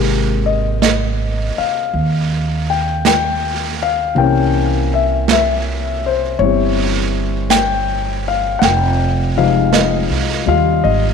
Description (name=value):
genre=jazz ballad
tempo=54 BPM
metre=4/4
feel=swing 68% on 8ths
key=Ab major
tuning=A4 = 441 Hz
part: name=warm concert grand piano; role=accompaniment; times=0.0-11.1 s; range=C3 to G5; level=-16 LUFS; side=left 8 dB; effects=none
part: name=upright bass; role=bass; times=0.0-11.1 s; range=F1 to Eb2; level=-19 LUFS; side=right 3 dB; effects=none
part: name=vintage brush drum kit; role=drums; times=0.8-11.1 s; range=brushed snare drum, hi-hat, snare drum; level=-21 LUFS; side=right 10 dB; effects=none
room=moderate echo chamber reverb, RT60 2.6 s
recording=1960s-style stereo with parts hard left and right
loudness=-14 LUFS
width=side -6 dB against mid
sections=0.0-11.1 A section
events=none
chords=0.0 Abmaj9; 4.2 C7b9; 8.6 Fm7